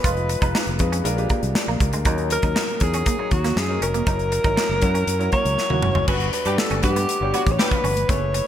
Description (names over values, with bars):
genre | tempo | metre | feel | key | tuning
polished 1980s jazz-funk pop | 119 BPM | 4/4 | straight | unclear | A4 = 441 Hz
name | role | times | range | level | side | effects
breathy alto saxophone | melody | 0.0-8.5 s | F#4 to C#5 | -24 LUFS | equal | none
warm concert grand piano | accompaniment | 0.0-8.5 s | F#3 to F#5 | -28 LUFS | left 2 dB | wide subtle chorus
electric guitar at the edge of break-up | riff | 0.0-8.4 s | G#3 to F4 | -30 LUFS | right 5 dB | ensemble chorus
fingered electric bass | bass | 0.0-8.4 s | F1 to G2 | -24 LUFS | equal | none
modern studio drum kit | drums | 0.0-8.5 s | crash cymbal, hi-hat, kick drum, snare drum, toms | -23 LUFS | equal | gated reverb
warm horn section | second line | 6.1-7.8 s | F#3 to B4 | -30 LUFS | right 1 dB | ping-pong delay
congas | percussion | 6.1-8.5 s | none | -36 LUFS | left 1 dB | none
room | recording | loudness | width
light reverb, studio ambience | bright 1980s-style digital production | -18 LUFS | side -10 dB against mid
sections
0.0-6.1 A section; 6.1-8.5 B section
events
drum fill 5.6-6.1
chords
0.0 Fm7b5; 1.1 A#7; 2.1 D#m7; 4.1 F#7; 6.1 Gmaj7